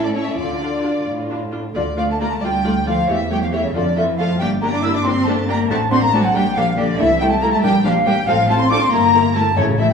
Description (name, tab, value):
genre	quick classical-period movement for symphony orchestra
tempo	92 BPM (dotted quarters)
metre	6/8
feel	rubato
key	D minor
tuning	A4 = 440 Hz
part	rich chamber violin section	melody	0.0-9.9 s	F#4 to E5	-29 LUFS	left 4 dB	none
part	warm chamber violin section	second line	0.0-9.9 s	F4 to E6	-24 LUFS	left 2 dB	none
part	warm French horn section	sustained chords	0.0-1.5 s	C#4 to F4	-24 LUFS	left 1 dB	none
part	clear studio double bass section	bass	0.0-9.9 s	G1 to F2	-23 LUFS	right 1 dB	none
part	warm chamber cello section	bass	0.0-9.9 s	A2 to E4	-21 LUFS	right 1 dB	none
part	rich chamber viola section	accompaniment	0.2-9.9 s	A3 to G4	-23 LUFS	left 1 dB	none
part	mellow flute section	second line	1.8-9.9 s	C#5 to E6	-20 LUFS	left 1 dB	none
part	timpani	percussion	5.7-6.3, 9.6-9.9 s	A2	-24 LUFS	left 3 dB	none
room	wet recital hall reverb, RT60 1.4 s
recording	studio ambience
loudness	-15 LUFS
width	side -6 dB against mid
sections	0.0-1.8 A section; 1.8-9.9 B section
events	none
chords	0.4 Dm; 3.1 A7/E; 3.7 Dm/F; 4.4 Gm; 5.7 D7/A; 6.3 Gm/Bb; 7.0 Am/C; 7.6 Gm/Bb; 8.3 F/A; 8.9 Edim/G